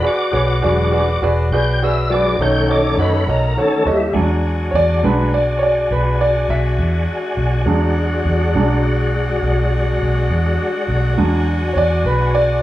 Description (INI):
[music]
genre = slow blues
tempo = 68 BPM (dotted quarters)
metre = 12/8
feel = straight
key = E mixolydian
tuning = A4 = 440 Hz
[part]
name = clear upright piano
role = accompaniment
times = 0.0-12.6 s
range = F#3 to F#5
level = -18 LUFS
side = right 2 dB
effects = none
[part]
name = mellow saxophone section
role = sustained chords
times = 0.0-12.6 s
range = G#3 to F#4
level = -26 LUFS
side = left 2 dB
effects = none
[part]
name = tonewheel organ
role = sustained chords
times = 0.0-12.6 s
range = D3 to G5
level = -21 LUFS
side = left 1 dB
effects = slow rotary speaker, chorus vibrato
[part]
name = vintage muted fingered electric bass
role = bass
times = 0.3-12.6 s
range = E1 to F#2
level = -18 LUFS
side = equal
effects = none
[sound]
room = moderate large studio reverb, RT60 0.8 s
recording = band playing live in one room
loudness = -14 LUFS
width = side -14 dB against mid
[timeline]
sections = 0.0-4.2 A section; 4.2-12.6 A section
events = tonewheel organ solo 0.0-4.2; upright piano solo 4.2-12.6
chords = 0.0 E9; 2.4 B9; 4.2 E9